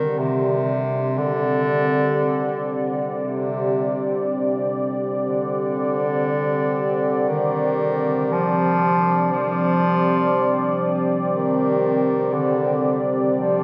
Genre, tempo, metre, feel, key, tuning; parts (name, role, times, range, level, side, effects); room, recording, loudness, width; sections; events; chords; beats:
ambient; 59 BPM; 4/4; straight; C minor; A4 = 440 Hz
clear bass clarinet; melody; 0.0-13.6 s; C3 to F3; -24 LUFS; equal; diffuse ambient delay
dark analog pad; sustained chords; 0.0-13.6 s; C4 to D5; -24 LUFS; equal; chorus
wet cathedral reverb, RT60 7.0 s; -21 LUFS; mono
0.0-13.6 A section
0.0 Csus2
0.15 | 1.16 2.16 3.18 4.20 | 5.23 6.25 7.27 8.29 | 9.30 10.31 11.32 12.33 | 13.33